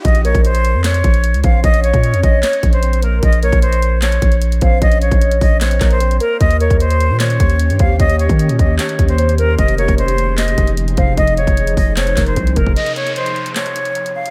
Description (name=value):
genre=hip hop, trap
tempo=151 BPM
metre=4/4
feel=half-time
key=Bb dorian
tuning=A4 = 440 Hz
part: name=breathy silver concert flute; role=melody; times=0.0-14.3 s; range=Bb4 to F5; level=-21 LUFS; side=equal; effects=delay
part: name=long sustained 808-style bass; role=bass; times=0.0-12.8 s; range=F1 to Eb3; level=-17 LUFS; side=equal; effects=none
part: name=trap drum kit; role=drums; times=0.0-14.3 s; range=handclaps, hi-hat, kick drum, snare drum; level=-18 LUFS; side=equal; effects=none
part: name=riser and downlifter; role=sound effects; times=0.0, 12.8-14.3 s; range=none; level=-31 LUFS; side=equal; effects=none
part: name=soft octave-layered synth lead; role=second line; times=0.2-12.8 s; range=Bb4 to Eb5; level=-25 LUFS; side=equal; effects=chorus, phaser, delay
part: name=ethereal airy pad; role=sustained chords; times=7.1-12.7 s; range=C3 to Ab4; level=-26 LUFS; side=equal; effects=ensemble chorus, built-in reverb
room=light reverb, digital ambience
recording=none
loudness=-14 LUFS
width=mono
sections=0.0-12.8 A section; 12.8-14.3 B section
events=drum fill 12.4-12.8; break 12.8-14.3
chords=0.0 Bbm; 6.4 Eb7; 9.6 Fm7; 12.8 N.C.